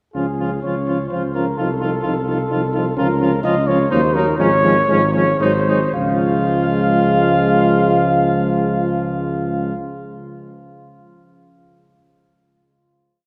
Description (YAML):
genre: classical, brass quintet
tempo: 110-130 BPM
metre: 3/4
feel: rubato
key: Db major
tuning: A4 = 439 Hz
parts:
  - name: dark trumpet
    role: melody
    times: 0.1-9.7 s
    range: Ab4 to F5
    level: -22 LUFS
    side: equal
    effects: none
  - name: bright trumpet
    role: second line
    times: 0.1-9.7 s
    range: Db4 to F4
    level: -29 LUFS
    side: equal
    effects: none
  - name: mellow French horn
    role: accompaniment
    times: 0.1-9.7 s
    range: Ab3 to Eb4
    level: -26 LUFS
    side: equal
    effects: none
  - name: mellow tuba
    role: bass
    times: 0.1-9.7 s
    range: Ab1 to Eb2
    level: -23 LUFS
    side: equal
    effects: none
  - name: warm euphonium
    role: accompaniment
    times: 0.2-9.7 s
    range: F3 to Gb3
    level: -25 LUFS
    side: equal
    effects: none
room: wet church reverb, RT60 3.7 s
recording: dark, warm production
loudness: -17 LUFS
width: mono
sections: 0.1-5.9 A section; 5.9-9.0 final chord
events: slowing down 2.3-5.9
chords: 0.1 Db; 1.6 F7/C; 3.0 Bbm/Db; 3.9 Ebm; 4.4 Db/Ab; 5.4 Ab7; 5.9 Db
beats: | 0.15 0.64 1.11 | 1.58 2.05 2.51 | 2.98 3.44 3.91 | 4.39 4.88 5.40 | 5.93 6.45 6.96 | 7.46 7.96 8.46